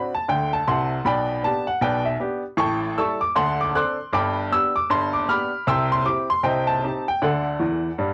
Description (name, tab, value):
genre	jazz, stride piano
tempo	156 BPM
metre	4/4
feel	swing 62% on 8ths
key	G major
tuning	A4 = 440 Hz
part	bright upright piano	solo	0.0-8.1 s	G1 to F#6	-22 LUFS	equal	none
room	moderate small room reverb, RT60 0.6 s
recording	home recording on cassette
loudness	-22 LUFS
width	mono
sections	0.0-8.1 A section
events	upright piano fill 7.6-8.1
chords	0.0 D7; 1.1 G/B; 2.6 A7; 3.4 D7; 4.1 G; 5.7 C; 6.4 Cm; 7.2 D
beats	0.29 0.67 | 1.05 1.44 1.82 2.21 | 2.59 2.98 3.36 3.75 | 4.13 4.52 4.90 5.29 | 5.67 6.06 6.45 6.83 | 7.22 7.60 7.99